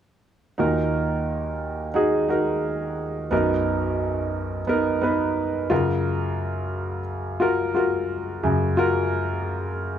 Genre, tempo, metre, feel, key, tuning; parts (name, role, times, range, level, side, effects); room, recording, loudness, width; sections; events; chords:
pop; 88 BPM; 4/4; swing 56% on 16ths; A4 = 440 Hz
clear concert grand piano; accompaniment; 0.6-10.0 s; B1 to B4; -22 LUFS; equal
moderate studio reverb, RT60 0.5 s; small room ambience; -22 LUFS; side -9 dB against mid
0.6-10.0 A section
0.6 D#m; 3.3 Bmaj7; 5.7 F#maj7